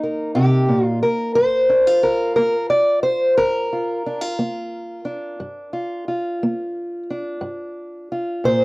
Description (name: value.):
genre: acoustic country blues, solo or duo.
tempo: 59 BPM (dotted quarters).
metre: 12/8.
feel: straight.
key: G minor.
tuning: A4 = 438 Hz.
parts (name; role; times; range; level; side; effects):
fingerpicked steel-string acoustic guitar; solo; 0.0-8.6 s; G2 to D5; -18 LUFS; equal; none.
room: wet booth ambience, RT60 0.3 s.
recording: home recording on cassette.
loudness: -17 LUFS.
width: side -24 dB against mid.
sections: 0.0-8.6 A section.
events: none.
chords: 0.0 Cm7; 1.4 Gm7.